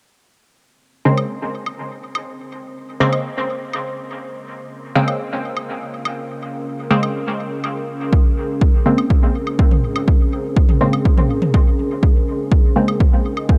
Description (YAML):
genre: dub techno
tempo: 123 BPM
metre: 4/4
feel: straight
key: Bb minor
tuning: A4 = 441 Hz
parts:
  - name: deep dark ambient pad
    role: sustained chords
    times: 1.7-13.6 s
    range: Db4 to F5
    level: -29 LUFS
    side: equal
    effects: chorus, built-in reverb, sidechain pumping
  - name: filtered dub chord stab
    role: stabs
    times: 1.1-13.1 s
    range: Db3 to C4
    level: -23 LUFS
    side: equal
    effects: chorus, phaser, sidechain pumping, dub echo
  - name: electronic woodblock and toms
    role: percussion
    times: 1.2-13.5 s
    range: none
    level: -28 LUFS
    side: equal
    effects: sidechain pumping on perc, sidechain pumping on toms, dub echo
  - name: electronic kick drum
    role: drums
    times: 8.1-13.6 s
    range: none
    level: -16 LUFS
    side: equal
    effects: overdrive
room: light reverb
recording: dark, warm production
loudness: -18 LUFS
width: mono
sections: 0.3-13.6 A section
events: none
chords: 0.3 Bbm9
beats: | 0.32 0.81 1.30 1.78 | 2.27 2.76 3.25 3.73 | 4.22 4.71 5.20 5.69 | 6.17 6.66 7.15 7.64 | 8.13 8.61 9.10 9.59 | 10.08 10.56 11.05 11.54 | 12.03 12.52 13.00 13.49